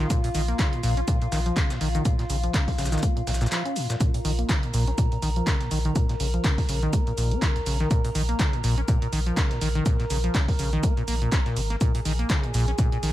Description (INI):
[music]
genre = acid house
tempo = 123 BPM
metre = 4/4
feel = swing 57% on 16ths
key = Bb minor pentatonic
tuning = A4 = 440 Hz
[part]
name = warbly tape-like pad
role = sustained chords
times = 0.0-13.1 s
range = F4 to Bb5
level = -33 LUFS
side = equal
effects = chorus, built-in reverb, sidechain pumping
[part]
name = acid bass, saw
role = riff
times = 0.0-13.1 s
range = Bb1 to Db4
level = -28 LUFS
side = equal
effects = wide subtle chorus, cassette tape, digital delay
[part]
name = warm sub bass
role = bass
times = 0.0-13.1 s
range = Ab1 to Bb1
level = -26 LUFS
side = equal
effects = sidechain pumping
[part]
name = breakbeat sampler-style drum kit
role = drums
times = 0.0-13.1 s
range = hi-hat, shaker, snare drum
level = -38 LUFS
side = left 2 dB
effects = sidechain pumping on perc, high-pass filter on perc, high-pass filter on snare, sidechain pumping on hats, high-pass filter on hats
[part]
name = punchy analog drum machine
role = drums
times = 0.0-13.1 s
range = handclaps, hi-hat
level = -32 LUFS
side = right 1 dB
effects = none
[part]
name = electronic kick drum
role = drums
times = 0.1-12.9 s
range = none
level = -23 LUFS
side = equal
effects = none
[sound]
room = little or no reverb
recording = none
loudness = -22 LUFS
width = side -14 dB against mid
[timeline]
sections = 0.0-13.1 A section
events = break 3.5-4.0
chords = 0.0 Bbm